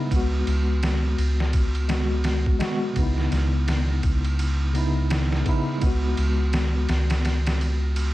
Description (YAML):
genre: trip hop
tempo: 84 BPM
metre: 4/4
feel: swing 60% on 16ths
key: unclear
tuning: A4 = 440 Hz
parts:
  - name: mellow tine electric piano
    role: accompaniment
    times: 0.0-8.1 s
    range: C#3 to F#4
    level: -27 LUFS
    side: equal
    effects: medium stereo tremolo, tape echo
  - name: soft dub sub bass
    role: bass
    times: 0.1-8.1 s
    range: C#2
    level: -23 LUFS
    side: equal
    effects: tube saturation
  - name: trip hop sampler-style drum kit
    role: drums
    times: 0.1-8.1 s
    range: kick drum, ride cymbal, snare drum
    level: -26 LUFS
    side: equal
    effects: vintage 12-bit sampler grit
room: digital ambience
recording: vinyl crackle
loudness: -21 LUFS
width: side -16 dB against mid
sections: 0.0-8.1 A section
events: none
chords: 0.1 G#m7/C#; 3.0 C#m9; 5.8 G#m7/C#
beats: | 0.11 0.82 1.53 2.25 | 2.96 3.68 4.39 5.11 | 5.82 6.54 7.25 7.96